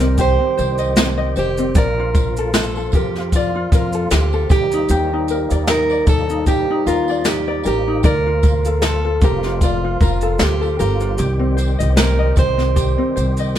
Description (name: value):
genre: acoustic pop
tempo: 76 BPM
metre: 4/4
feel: swing 55% on 16ths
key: Bb major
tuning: A4 = 439 Hz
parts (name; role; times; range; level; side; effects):
- fingerpicked plugged-in steel-string acoustic guitar; melody; 0.0-13.6 s; F4 to C5; -21 LUFS; right 4 dB; none
- ukulele; accompaniment; 0.0-13.6 s; C4 to Eb5; -22 LUFS; left 4 dB; none
- bright tonewheel organ; sustained chords; 0.0-13.6 s; Eb3 to G4; -28 LUFS; equal; chorus vibrato, fast rotary speaker
- upright bass; bass; 0.0-13.6 s; F1 to F2; -20 LUFS; equal; none
- jazz brush drum kit; drums; 0.0-13.6 s; kick drum, shaker, snare drum; -18 LUFS; equal; none
- tambourine; percussion; 0.2-13.6 s; none; -36 LUFS; right 4 dB; none
room: light reverb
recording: band playing live in one room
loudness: -15 LUFS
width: side -11 dB against mid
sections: 0.0-13.6 A section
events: none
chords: 0.0 Cm; 1.8 Bbmaj7; 4.5 Ebmaj7; 8.0 Bbmaj7; 11.2 Cm